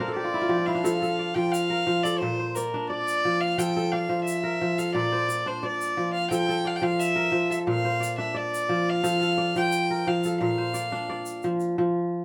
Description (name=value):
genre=west african traditional, West African string and xylophone music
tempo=88 BPM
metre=4/4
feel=straight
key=F major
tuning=A4 = 437 Hz
part: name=rich violin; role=melody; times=0.0-11.4 s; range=Bb4 to G5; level=-30 LUFS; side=equal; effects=none
part: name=kora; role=arpeggios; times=0.0-12.2 s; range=Bb2 to D5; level=-28 LUFS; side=equal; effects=none
part: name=egg shaker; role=percussion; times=0.9-11.7 s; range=none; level=-42 LUFS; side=equal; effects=none
room=moderate large studio reverb, RT60 1.0 s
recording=band playing live in one room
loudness=-26 LUFS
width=mono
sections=0.8-11.8 A section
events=kora fill 0.0-0.8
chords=0.0 Bb; 0.8 F; 2.2 Bb; 3.6 F; 5.0 Bb; 6.3 F; 7.7 Bb; 9.0 F; 10.4 Bb